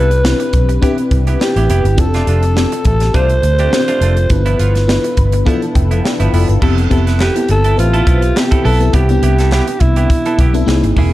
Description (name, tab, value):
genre	polished 1980s jazz-funk pop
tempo	104 BPM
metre	4/4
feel	swing 54% on 16ths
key	C major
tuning	A4 = 440 Hz
part	growling alto saxophone	melody	0.0-11.0 s	E4 to C5	-18 LUFS	right 1 dB	digital delay
part	FM electric piano with soft pad layer	accompaniment	0.0-11.1 s	Bb3 to B5	-18 LUFS	left 3 dB	ensemble chorus
part	semi-hollow electric guitar	riff	0.0-11.1 s	F3 to B4	-24 LUFS	right 4 dB	lush chorus
part	vintage muted fingered electric bass	bass	0.0-11.1 s	E1 to D2	-13 LUFS	equal	none
part	crisp fusion drum kit	drums	0.1-11.1 s	crash cymbal, hi-hat, kick drum, snare drum	-17 LUFS	equal	none
part	group handclap	percussion	7.2-10.8 s	none	-32 LUFS	left 3 dB	none
room	light reverb, small room ambience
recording	dark, warm production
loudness	-10 LUFS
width	side -16 dB against mid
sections	0.0-6.6 A section; 6.6-11.1 B section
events	FM electric piano fill 4.9-6.6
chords	0.0 Cmaj7; 2.0 F6; 4.3 G13; 6.6 Fmaj9#11; 8.9 Cmaj7